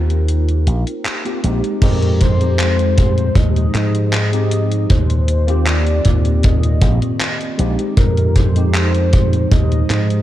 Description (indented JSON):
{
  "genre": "vaporwave",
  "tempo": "78 BPM",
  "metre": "4/4",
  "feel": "straight",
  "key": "unclear",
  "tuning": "A4 = 440 Hz",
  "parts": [
    { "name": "tine electric piano", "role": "accompaniment", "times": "0.0-10.2 s", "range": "Ab3 to G4", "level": "-24 LUFS", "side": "equal", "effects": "overdrive, medium stereo tremolo, ensemble chorus, tape echo" },
    { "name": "warbly tape-like pad", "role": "sustained chords", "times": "0.0-10.2 s", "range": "Eb3 to G5", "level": "-26 LUFS", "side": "equal", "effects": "chorus, built-in reverb" },
    { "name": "slap bass with an envelope filter", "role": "bass", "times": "0.0-10.2 s", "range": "Bb1 to Ab2", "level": "-16 LUFS", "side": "equal", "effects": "none" },
    { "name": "gated 80s digital drum machine", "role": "drums", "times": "0.1-10.2 s", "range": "crash cymbal, handclaps, hi-hat", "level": "-24 LUFS", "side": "equal", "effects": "gated reverb" },
    { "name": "warm velvety synth lead", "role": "melody", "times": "1.8-10.2 s", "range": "Bb4 to Eb5", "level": "-25 LUFS", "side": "left 2 dB", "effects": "chorus, tape echo" },
    { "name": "kick drum", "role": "drums", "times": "1.8-9.7 s", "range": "none", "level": "-16 LUFS", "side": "equal", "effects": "none" }
  ],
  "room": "light reverb, digital ambience",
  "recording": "none",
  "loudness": "-13 LUFS",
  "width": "side -13 dB against mid",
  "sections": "0.0-1.8 A section; 1.8-10.2 B section",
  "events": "none",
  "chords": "0.0 Eb6; 1.8 Fm9; 4.9 Eb6; 8.0 Fm9"
}